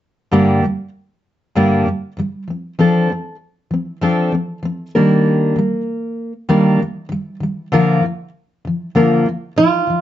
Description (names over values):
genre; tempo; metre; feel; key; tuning
acoustic pop; 97 BPM; 4/4; straight; G minor; A4 = 436 Hz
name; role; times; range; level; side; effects
fingerpicked steel-string acoustic guitar; accompaniment; 0.3-10.0 s; G2 to Bb4; -14 LUFS; left 1 dB; none
flamenco guitar; melody; 9.6-10.0 s; F4; -13 LUFS; right 4 dB; plate reverb
room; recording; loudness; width
moderate studio reverb, RT60 0.6 s; dark, warm production, nothing above 7.9 kHz; -15 LUFS; side -12 dB against mid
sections
0.3-10.0 A section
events
none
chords
0.3 Gm; 2.5 F6; 4.9 Ebmaj7; 7.7 Bb/D